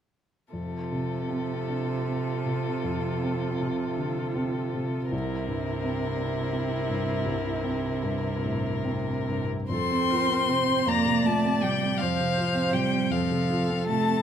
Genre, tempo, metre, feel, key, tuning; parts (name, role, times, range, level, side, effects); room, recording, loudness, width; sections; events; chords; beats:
classical, slow romantic movement for piano quartet; 45-58 BPM (dotted quarters); 12/8; rubato; F major; A4 = 440 Hz
rich violin; melody; 0.5-14.2 s; A4 to C6; -30 LUFS; left 8 dB
clear cello; second line; 0.5-14.2 s; C3 to C4; -29 LUFS; right 4 dB
rich viola; accompaniment; 0.5-14.2 s; E4 to D5; -34 LUFS; right 3 dB
warm grand piano; accompaniment; 0.5-14.2 s; C2 to F4; -30 LUFS; left 1 dB
light reverb; close, detailed microphones; -25 LUFS; side -9 dB against mid
0.5-9.7 A section; 9.7-14.2 B section
0.5 F; 5.1 C7; 9.7 F
| 0.53 1.69 2.85 3.99 | 5.13 6.18 7.28 8.44 | 9.71 10.88 12.02 13.12